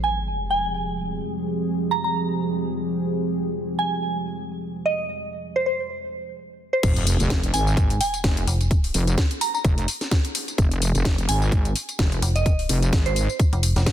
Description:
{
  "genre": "bass house",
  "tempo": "128 BPM",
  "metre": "4/4",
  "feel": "swing 56% on 16ths",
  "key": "F minor",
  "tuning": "A4 = 439 Hz",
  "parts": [
    { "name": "soft synth bell", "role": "melody", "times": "0.0-13.2 s", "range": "C5 to Bb5", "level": "-26 LUFS", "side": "right 2 dB", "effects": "chorus, tape echo" },
    { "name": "dark analog pad", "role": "sustained chords", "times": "0.0-6.3 s", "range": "F3 to Ab4", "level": "-26 LUFS", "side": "right 1 dB", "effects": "chorus, sidechain pumping" },
    { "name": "sub drop", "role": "sound effects", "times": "0.0-1.2, 6.8-8.7 s", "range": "none", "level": "-30 LUFS", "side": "equal", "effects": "none" },
    { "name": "wobble bass", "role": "bass", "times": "6.8-13.3 s", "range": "F1 to Ab1", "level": "-22 LUFS", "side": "equal", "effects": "chorus, overdrive, sidechain pumping" },
    { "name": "electronic kick drum", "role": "drums", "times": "6.8-13.9 s", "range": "none", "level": "-20 LUFS", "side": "equal", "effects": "none" },
    { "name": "garage drum kit", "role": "drums", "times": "6.8-13.9 s", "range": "crash cymbal, hi-hat, snare drum, tambourine", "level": "-27 LUFS", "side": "left 2 dB", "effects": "none" },
    { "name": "metallic FM bass", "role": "bass", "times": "8.5-8.9, 12.2-13.9 s", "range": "F1", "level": "-21 LUFS", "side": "equal", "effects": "tube saturation, sidechain pumping" }
  ],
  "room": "light reverb",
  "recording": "dense, heavily limited modern master",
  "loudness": "-20 LUFS",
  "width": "side -11 dB against mid",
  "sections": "0.0-6.8 A section; 6.8-13.9 B section",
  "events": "impact 0.0-1.2, 6.8-8.7; drop 6.8-13.9",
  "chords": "0.0 Fmadd9; 6.8 Fm"
}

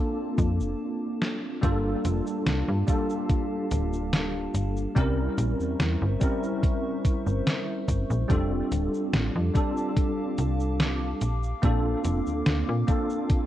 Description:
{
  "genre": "vaporwave",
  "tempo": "72 BPM",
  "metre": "4/4",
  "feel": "straight",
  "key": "unclear",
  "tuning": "A4 = 440 Hz",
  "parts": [
    { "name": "bell-like tine electric piano", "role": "accompaniment", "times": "0.0-13.5 s", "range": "G3 to Bb4", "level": "-28 LUFS", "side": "equal", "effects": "medium stereo tremolo, ensemble chorus, tape echo" },
    { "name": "warbly tape-like pad", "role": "sustained chords", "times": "0.0-13.5 s", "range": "Bb3 to D6", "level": "-38 LUFS", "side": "left 1 dB", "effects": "chorus, built-in reverb, phaser, vintage 12-bit sampler grit" },
    { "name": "slap-like FM bass", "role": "bass", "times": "0.4-12.8 s", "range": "D1 to Bb2", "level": "-27 LUFS", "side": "equal", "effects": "tube saturation" },
    { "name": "detuned 8-bit digital drum machine", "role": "drums", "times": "0.4-13.5 s", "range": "cabasa, hi-hat, snare drum", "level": "-30 LUFS", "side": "equal", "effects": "vintage 12-bit sampler grit, gated reverb" },
    { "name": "electronic kick drum", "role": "drums", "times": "0.4-13.5 s", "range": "none", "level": "-25 LUFS", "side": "equal", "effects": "vintage 12-bit sampler grit" }
  ],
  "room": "light reverb",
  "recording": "cassette tape",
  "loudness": "-24 LUFS",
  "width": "side -13 dB against mid",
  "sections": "0.0-1.6 A section; 1.6-13.5 B section",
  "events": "break 0.8-1.6; drum fill 1.2-1.6; band accent 1.2-1.6",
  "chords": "0.0 Bbmaj7; 1.6 Gm9; 5.0 C7b9; 8.3 F69; 11.2 Bbmaj7"
}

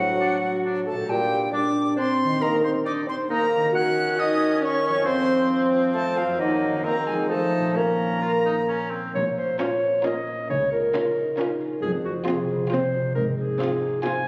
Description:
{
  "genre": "cinematic, playful, whimsical film cue",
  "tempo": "136 BPM",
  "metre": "3/4",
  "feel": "straight",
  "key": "Bb minor from 3.7 s",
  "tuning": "A4 = 440 Hz",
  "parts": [
    { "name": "bright silver concert flute", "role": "second line", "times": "0.0-8.9 s", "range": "Eb5 to Gb6", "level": "-30 LUFS", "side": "equal", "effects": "none" },
    { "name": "mellow clarinet", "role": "second line", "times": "0.0-14.3 s", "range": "Eb4 to Ab5", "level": "-28 LUFS", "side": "equal", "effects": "none" },
    { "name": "mellow bassoon", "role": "accompaniment", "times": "0.0-8.9 s", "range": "A2 to Bb3", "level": "-30 LUFS", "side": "equal", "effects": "none" },
    { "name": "dark French horn section", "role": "sustained chords", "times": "0.0-8.9 s", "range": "Eb3 to Gb4", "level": "-28 LUFS", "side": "equal", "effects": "none" },
    { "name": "concert harp", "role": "arpeggios", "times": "0.0-14.3 s", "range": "F2 to C5", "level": "-34 LUFS", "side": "equal", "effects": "none" },
    { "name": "clear oboe", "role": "second line", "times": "0.2-9.1 s", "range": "Bb3 to F4", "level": "-35 LUFS", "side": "equal", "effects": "none" },
    { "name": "warm chamber double bass section", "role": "bass", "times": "9.1-13.5 s", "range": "F1 to Db2", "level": "-37 LUFS", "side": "equal", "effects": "none" },
    { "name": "warm chamber cello section", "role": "bass", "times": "9.2-13.5 s", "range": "F2 to Db3", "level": "-39 LUFS", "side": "equal", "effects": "none" },
    { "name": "warm chamber violin section", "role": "melody", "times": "9.6-14.3 s", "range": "F4 to Bb4", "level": "-38 LUFS", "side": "equal", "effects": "none" },
    { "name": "rich chamber violin section", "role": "second line", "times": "9.6-14.3 s", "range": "F4", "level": "-34 LUFS", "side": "equal", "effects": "none" },
    { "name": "rich chamber viola section", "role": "accompaniment", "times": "9.6-14.3 s", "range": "C4 to Db4", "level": "-34 LUFS", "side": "equal", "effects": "none" }
  ],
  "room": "wet scoring stage reverb, RT60 2.1 s",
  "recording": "recorded on a phone in the room, club reverb, compression",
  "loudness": "-23 LUFS",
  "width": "mono",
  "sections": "0.0-9.1 A section; 9.1-14.3 B section",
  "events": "none",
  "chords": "0.0 D7/A; 1.1 Gm/Bb; 2.4 Eb; 3.7 Ebm7; 5.1 F; 6.4 Gb6; 6.8 Cdim/Eb; 7.3 F7; 7.8 Bbm; 10.5 Bbm/Db; 11.8 Fm; 13.2 Fm/Ab"
}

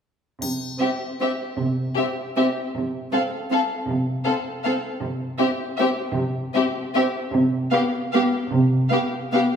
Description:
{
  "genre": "classical, orchestral ballroom waltz",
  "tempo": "156 BPM",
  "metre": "3/4",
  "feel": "uneven beats, rubato",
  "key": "C major",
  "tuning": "A4 = 437 Hz",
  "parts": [
    { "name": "dark symphonic cello section", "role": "bass", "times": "0.4-8.8 s", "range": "C3", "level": "-23 LUFS", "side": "right 2 dB", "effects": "none" },
    { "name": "triangle", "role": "percussion", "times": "0.4-1.2 s", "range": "none", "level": "-34 LUFS", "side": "left 5 dB", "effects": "none" },
    { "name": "warm symphonic violin section", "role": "melody", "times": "0.8-9.4 s", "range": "E5 to F5", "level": "-28 LUFS", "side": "left 3 dB", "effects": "none" },
    { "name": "clear symphonic violin section", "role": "second line", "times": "0.8-9.4 s", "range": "G4 to A4", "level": "-28 LUFS", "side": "left 4 dB", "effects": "none" },
    { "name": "dark symphonic viola section", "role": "accompaniment", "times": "0.8-9.4 s", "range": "B3 to C4", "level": "-24 LUFS", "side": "right 1 dB", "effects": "none" }
  ],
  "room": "wet recital hall reverb, RT60 1.8 s",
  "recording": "recorded in a church or concert hall",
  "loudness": "-21 LUFS",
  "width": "side -7 dB against mid",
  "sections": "0.4-9.6 A section",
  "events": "none",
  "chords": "none"
}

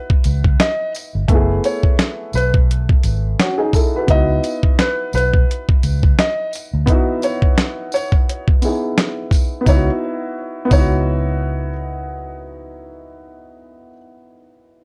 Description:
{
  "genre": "lo-fi hip hop",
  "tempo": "86 BPM",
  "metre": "4/4",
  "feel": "swing 58% on 16ths",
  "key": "C# minor",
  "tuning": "A4 = 444 Hz",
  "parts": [
    { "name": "felt-muted upright piano", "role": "melody", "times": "0.0-11.7 s", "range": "B4 to D#5", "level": "-24 LUFS", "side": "equal", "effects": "low-pass filter, tape echo" },
    { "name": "dark upright piano", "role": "accompaniment", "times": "0.0-14.8 s", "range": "A3 to B4", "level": "-25 LUFS", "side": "equal", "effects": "low-pass filter, plate reverb" },
    { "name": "dusty soul sampler-style drum kit", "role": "drums", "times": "0.1-10.9 s", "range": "hi-hat, kick drum, snare drum", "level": "-17 LUFS", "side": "equal", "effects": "none" },
    { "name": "tambourine", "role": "percussion", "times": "0.2-10.9 s", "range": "none", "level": "-38 LUFS", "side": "equal", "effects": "none" },
    { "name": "vintage muted fingered electric bass", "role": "bass", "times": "0.3-13.9 s", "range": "F#1 to D2", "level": "-21 LUFS", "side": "equal", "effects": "none" }
  ],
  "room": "light reverb",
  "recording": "cassette tape",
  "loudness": "-17 LUFS",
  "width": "mono",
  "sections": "0.0-9.7 A section; 9.7-12.5 B section",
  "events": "none",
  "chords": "0.0 C#m11; 1.3 F#m11; 4.1 C#m11 (rootless); 9.7 C#m11"
}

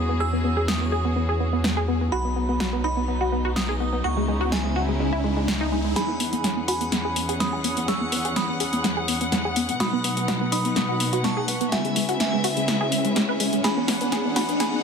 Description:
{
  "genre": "progressive house",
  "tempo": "125 BPM",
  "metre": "4/4",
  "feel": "straight",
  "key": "E major",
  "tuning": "A4 = 440 Hz",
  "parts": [
    { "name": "glassy synth bell", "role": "melody", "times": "0.0-14.8 s", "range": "E5 to E6", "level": "-30 LUFS", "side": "right 2 dB", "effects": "chorus, tremolo, ping-pong delay" },
    { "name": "dark studio string section", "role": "sustained chords", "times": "0.0-14.8 s", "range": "E2 to F#5", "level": "-28 LUFS", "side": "left 1 dB", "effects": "none" },
    { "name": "wide unison pluck", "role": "arpeggios", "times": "0.0-14.8 s", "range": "G#3 to B4", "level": "-26 LUFS", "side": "equal", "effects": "analog chorus, ping-pong delay" },
    { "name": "saturated sub bass", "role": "bass", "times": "0.0-5.9 s", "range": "B1 to E2", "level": "-26 LUFS", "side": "equal", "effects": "none" },
    { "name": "deep house drum kit", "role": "drums", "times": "0.7-14.7 s", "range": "hi-hat, snare drum", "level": "-27 LUFS", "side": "equal", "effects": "overdrive" },
    { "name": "riser", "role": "sound effects", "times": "3.7-14.8 s", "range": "none", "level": "-32 LUFS", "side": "left 1 dB", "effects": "none" }
  ],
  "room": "light reverb",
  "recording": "dense, heavily limited modern master, high-pass filter",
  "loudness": "-21 LUFS",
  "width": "side -6 dB against mid",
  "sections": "0.0-6.0 A section; 6.0-14.8 B section",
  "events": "filter sweep on synth pluck 0.0-6.0, 6.0-14.8; riser 3.7-6.0, 6.0-14.8; build-up 6.0-14.8; drum fill 6.0-14.8",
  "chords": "0.0 E6; 2.1 B; 4.0 C#m7; 6.0 E6; 9.8 B; 11.7 C#m7; 13.6 E6"
}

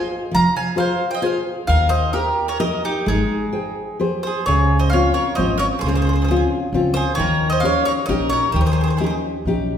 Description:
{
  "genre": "italian folk, Italian serenade",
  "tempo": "132 BPM",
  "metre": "3/4",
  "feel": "rubato",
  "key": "Ab major, Db major from 4.5 s",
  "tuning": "A4 = 444 Hz",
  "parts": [
    { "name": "mandolin", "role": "melody", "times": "0.0-9.1 s", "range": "G4 to Bb5", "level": "-22 LUFS", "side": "equal", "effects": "slapback echo" },
    { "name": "bowl-back mandolin", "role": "second line", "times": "0.0-9.2 s", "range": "Eb4 to F5", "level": "-26 LUFS", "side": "right 4 dB", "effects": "none" },
    { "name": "nylon-string guitar", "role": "accompaniment", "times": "0.0-9.8 s", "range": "Db3 to G5", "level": "-20 LUFS", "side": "left 2 dB", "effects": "none" },
    { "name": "upright bass", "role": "bass", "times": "0.3-9.8 s", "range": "F1 to Eb2", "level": "-22 LUFS", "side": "equal", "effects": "none" }
  ],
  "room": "wet recital hall reverb, RT60 1.5 s",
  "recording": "heard from further back in the room",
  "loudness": "-17 LUFS",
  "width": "side -8 dB against mid",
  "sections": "0.0-4.5 A section; 4.5-9.8 B section",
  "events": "none",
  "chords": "0.3 Fm; 1.7 Eb; 3.1 Abmaj7; 4.5 Dbmaj7; 7.2 Eb7"
}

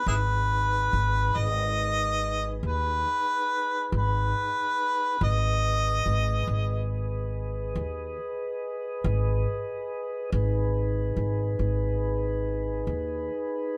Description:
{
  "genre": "slow blues",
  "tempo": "47 BPM (dotted quarters)",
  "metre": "12/8",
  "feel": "straight",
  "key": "G# minor",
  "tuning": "A4 = 440 Hz",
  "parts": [
    { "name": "warm harmonica", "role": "melody", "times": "0.0-6.9 s", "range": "E4 to D#5", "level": "-28 LUFS", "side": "equal", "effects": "overdrive" },
    { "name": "mellow tonewheel organ", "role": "sustained chords", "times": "0.0-13.8 s", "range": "D#4 to D#5", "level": "-35 LUFS", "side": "equal", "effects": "slow rotary speaker" },
    { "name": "upright bass", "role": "bass", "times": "0.1-13.3 s", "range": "G#1 to D#2", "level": "-29 LUFS", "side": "equal", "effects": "none" }
  ],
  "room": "moderate studio reverb, RT60 0.7 s",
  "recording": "band playing live in one room",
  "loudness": "-27 LUFS",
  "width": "mono",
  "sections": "0.0-13.8 A section",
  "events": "none",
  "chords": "0.0 G#m"
}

